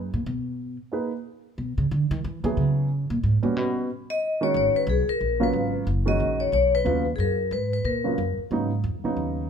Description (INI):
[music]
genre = modal jazz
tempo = 182 BPM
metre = 3/4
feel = swing 61% on 8ths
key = C# dorian, G# dorian from 4.5 s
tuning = A4 = 444 Hz
[part]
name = upright bass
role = bass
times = 0.0-9.5 s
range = F#1 to E3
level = -25 LUFS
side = equal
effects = none
[part]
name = warm upright piano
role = accompaniment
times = 0.9-9.5 s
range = C#3 to B4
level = -27 LUFS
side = right 4 dB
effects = none
[part]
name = vibraphone with medium hard mallets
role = melody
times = 4.1-8.3 s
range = G#4 to D#5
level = -24 LUFS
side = left 4 dB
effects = none
[sound]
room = light reverb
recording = band playing live in one room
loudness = -22 LUFS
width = side -7 dB against mid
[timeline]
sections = 0.0-4.5 A section; 4.5-9.5 B section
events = upright bass solo 0.0-4.5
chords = 0.0 C#m7; 3.6 D#7alt; 4.5 G#m9; 8.5 C#/G#